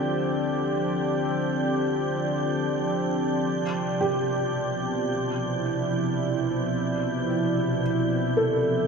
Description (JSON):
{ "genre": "ambient", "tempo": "free time", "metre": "none", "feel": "none", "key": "unclear", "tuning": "A4 = 441 Hz", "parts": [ { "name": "pedal steel guitar", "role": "melody", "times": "0.0-1.2 s", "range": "D5", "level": "-48 LUFS", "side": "equal", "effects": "none" }, { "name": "warm analog pad", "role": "sustained chords", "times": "0.0-8.9 s", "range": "B2 to D5", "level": "-25 LUFS", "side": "equal", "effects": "chorus, shimmer reverb" }, { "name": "organ-like drone", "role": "drone", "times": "0.0-8.9 s", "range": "F3", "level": "-32 LUFS", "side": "right 1 dB", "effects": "ensemble chorus, built-in reverb" }, { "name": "wind-like tuned noise texture", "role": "texture", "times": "0.0-8.9 s", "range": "G6", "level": "-36 LUFS", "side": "right 1 dB", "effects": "built-in reverb, shimmer reverb" }, { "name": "felt-muted upright piano", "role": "arpeggios", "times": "4.0-8.9 s", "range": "G4 to A4", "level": "-29 LUFS", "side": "right 1 dB", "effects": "dub echo" } ], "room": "wet spring reverb, RT60 2.8 s", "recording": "echo-heavy mix", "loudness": "-23 LUFS", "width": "side -5 dB against mid", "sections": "0.0-8.9 A section", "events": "none", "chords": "0.0 D7sus4; 3.5 Cmaj9" }